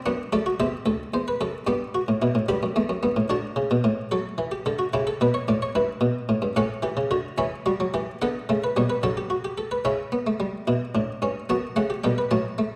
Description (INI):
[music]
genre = classical, baroque-style 4-part fugue for harpsichord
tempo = 74 BPM (dotted quarters)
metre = 12/8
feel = straight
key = unclear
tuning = A4 = 436 Hz
[part]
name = buff-stop harpsichord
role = solo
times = 0.0-12.8 s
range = D2 to B5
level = -25 LUFS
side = equal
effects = none
[sound]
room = wet recital hall reverb, RT60 1.5 s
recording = vinyl crackle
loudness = -25 LUFS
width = mono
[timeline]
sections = 0.0-9.9 A section; 9.9-12.8 B section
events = none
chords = 0.1 D; 1.7 G; 3.3 D; 4.9 C#dim; 6.6 A; 8.2 D; 9.9 C#m7b5; 11.5 F#m